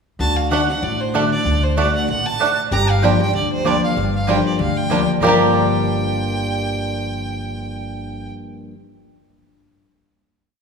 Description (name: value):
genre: bluegrass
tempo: 191 BPM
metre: 4/4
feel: swing 55% on 8ths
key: G minor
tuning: A4 = 442 Hz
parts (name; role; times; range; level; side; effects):
- clear fiddle; melody; 0.2-8.3 s; C5 to Bb5; -24 LUFS; right 3 dB; none
- lap resonator guitar; second line; 0.2-8.3 s; F#4 to Bb4; -25 LUFS; left 3 dB; none
- picked steel-string acoustic guitar; accompaniment; 0.2-8.7 s; G2 to G4; -21 LUFS; left 3 dB; none
- upright bass; bass; 0.2-8.3 s; G1 to D2; -24 LUFS; equal; none
- bluegrass banjo; arpeggios; 0.5-8.3 s; G3 to G4; -23 LUFS; right 4 dB; none
- mandolin; stabs; 0.5-8.7 s; A3 to G5; -24 LUFS; right 5 dB; none
room: wet concert hall reverb, RT60 2.0 s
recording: recorded in a church or concert hall, studio ambience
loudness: -16 LUFS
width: side -5 dB against mid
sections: 0.2-5.2 A section; 5.2-7.7 final chord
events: none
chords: 0.2 D; 2.7 Gm7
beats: | 0.20 0.52 0.83 1.14 | 1.46 1.77 2.09 2.40 | 2.72 3.03 3.35 3.66 | 3.97 4.29 4.60 4.91 | 5.22 5.54 5.85 6.16 | 6.48 6.79 7.10 7.41